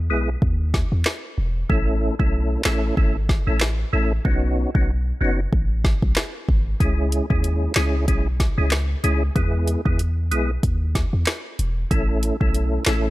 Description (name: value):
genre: dancehall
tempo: 94 BPM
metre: 4/4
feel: swing 56% on 16ths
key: unclear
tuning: A4 = 440 Hz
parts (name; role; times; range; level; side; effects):
- warm 808-style bass; bass; 0.0-13.1 s; E1 to E2; -22 LUFS; equal; none
- percussive tonewheel organ; accompaniment; 0.1-13.1 s; G#3 to A4; -25 LUFS; equal; chorus vibrato, fast rotary speaker, sidechain pumping
- afro-pop drum kit; drums; 0.4-13.0 s; handclaps, hi-hat, kick drum, rim click, snare drum; -22 LUFS; equal; none
room: digital ambience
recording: none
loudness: -19 LUFS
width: side -17 dB against mid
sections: 0.0-13.1 A section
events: break 0.0-6.8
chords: 0.0 E; 1.7 A; 4.3 Badd9; 6.8 C#m; 9.4 E; 11.9 A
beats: 0.42 1.06 | 1.70 2.34 2.97 3.61 | 4.25 4.89 5.53 6.17 | 6.80 7.44 8.08 8.72 | 9.36 9.99 10.63 11.27 | 11.91 12.55